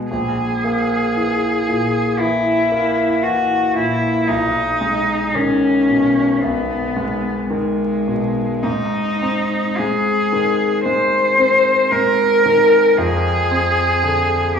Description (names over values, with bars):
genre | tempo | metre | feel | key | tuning
classical, romantic duo for cello and grand piano | 56 BPM | 4/4 | rubato | G# minor | A4 = 440 Hz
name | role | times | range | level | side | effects
rich cello | melody | 0.0-14.6 s | G#3 to C5 | -16 LUFS | left 1 dB | none
clear concert grand piano | accompaniment | 0.0-14.6 s | A#1 to C4 | -20 LUFS | equal | none
room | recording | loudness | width
wet recital hall reverb, RT60 1.5 s | heard from further back in the room, vinyl crackle, small room ambience | -15 LUFS | side -6 dB against mid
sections
0.0-14.6 A section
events
none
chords
0.1 F#9/A# (rootless); 4.3 G#m/B; 8.6 Ab; 13.0 Dm7b5/F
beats
| 0.10 1.17 2.20 3.24 | 4.29 5.35 6.42 7.51 | 8.64 9.79 10.86 11.92 | 12.97 14.03